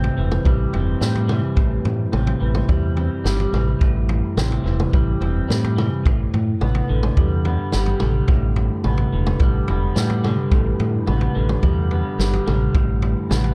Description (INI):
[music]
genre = psychedelic rock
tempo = 107 BPM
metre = 4/4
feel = straight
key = unclear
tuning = A4 = 440 Hz
[part]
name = electric guitar through a small old amp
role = riff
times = 0.0-13.5 s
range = A2 to C4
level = -27 LUFS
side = equal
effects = flanger, tape echo
[part]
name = deep dub fingered electric bass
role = bass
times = 0.0-13.5 s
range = E1 to A2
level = -23 LUFS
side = equal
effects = none
[part]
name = vintage drum kit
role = drums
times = 0.0-13.5 s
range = kick drum, snare drum, toms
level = -24 LUFS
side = equal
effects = none
[sound]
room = studio ambience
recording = echo-heavy mix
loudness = -20 LUFS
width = mono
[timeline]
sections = 0.0-13.5 A section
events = none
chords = 0.0 Am7; 6.1 G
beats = 0.46 1.01 | 1.57 2.14 2.70 3.26 | 3.81 4.38 4.93 5.49 | 6.05 6.61 7.17 7.73 | 8.29 8.85 9.40 9.96 | 10.52 11.08 11.63 12.19 | 12.75 13.30